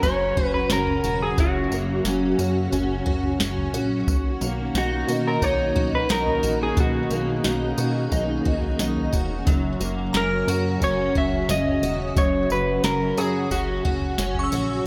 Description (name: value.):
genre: dream pop.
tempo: 89 BPM.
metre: 4/4.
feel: straight.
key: F# major.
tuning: A4 = 440 Hz.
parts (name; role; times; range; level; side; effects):
electric guitar through a small old amp; melody; 0.0-14.5 s; F#4 to E5; -27 LUFS; equal; spring reverb, delay.
soft string machine; sustained chords; 0.0-14.9 s; C#3 to G#4; -31 LUFS; equal; ensemble chorus.
picked twelve-string acoustic guitar; arpeggios; 0.0-14.9 s; F#2 to F#4; -30 LUFS; equal; analog chorus, delay.
plucky analog bass; bass; 0.0-14.8 s; E1 to B2; -31 LUFS; equal; none.
soft vintage rhythm box; drums; 0.0-14.7 s; kick drum, snare drum, tambourine, toms; -28 LUFS; equal; none.
shimmering bell with halo; texture; 10.1-14.9 s; A#5 to E6; -36 LUFS; equal; ensemble chorus, delay.
room: light reverb.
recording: none.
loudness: -23 LUFS.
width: mono.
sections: 0.0-14.9 A section.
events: none.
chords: 0.0 F#; 4.1 Bmaj7; 9.5 F#.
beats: 0.03 0.70 | 1.38 2.05 2.73 3.40 | 4.08 4.75 5.42 6.10 | 6.77 7.45 8.12 8.79 | 9.47 10.14 10.82 11.49 | 12.16 12.84 13.51 14.19 | 14.86.